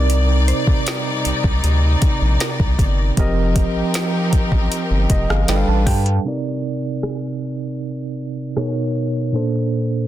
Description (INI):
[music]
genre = contemporary R&B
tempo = 78 BPM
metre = 4/4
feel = straight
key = C dorian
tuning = A4 = 440 Hz
[part]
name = tine electric piano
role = accompaniment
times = 0.0-10.1 s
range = Bb2 to A5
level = -21 LUFS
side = right 2 dB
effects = medium stereo tremolo
[part]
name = rich studio string section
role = sustained chords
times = 0.0-6.2 s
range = C3 to D5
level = -24 LUFS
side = left 2 dB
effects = none
[part]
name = round analog bass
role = bass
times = 0.0-6.2 s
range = F1 to G2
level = -17 LUFS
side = equal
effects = none
[part]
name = smooth R&B drum kit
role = drums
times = 0.1-8.7 s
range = hi-hat, kick drum, rim click, snare drum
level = -19 LUFS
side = equal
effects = none
[part]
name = mallet-like synth pluck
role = texture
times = 0.5-6.6 s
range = G4 to C5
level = -35 LUFS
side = left 1 dB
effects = none
[sound]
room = little or no reverb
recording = dense, heavily limited modern master, low-pass filter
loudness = -16 LUFS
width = side -13 dB against mid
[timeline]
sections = 0.0-6.3 A section; 6.3-10.1 B section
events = tine electric piano fill 4.7-6.3; filter sweep 6.3-10.1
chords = 0.0 Cm9; 3.2 F9sus4; 5.5 G7; 6.3 Cm9; 8.6 Bmaj9; 9.3 Bbmaj9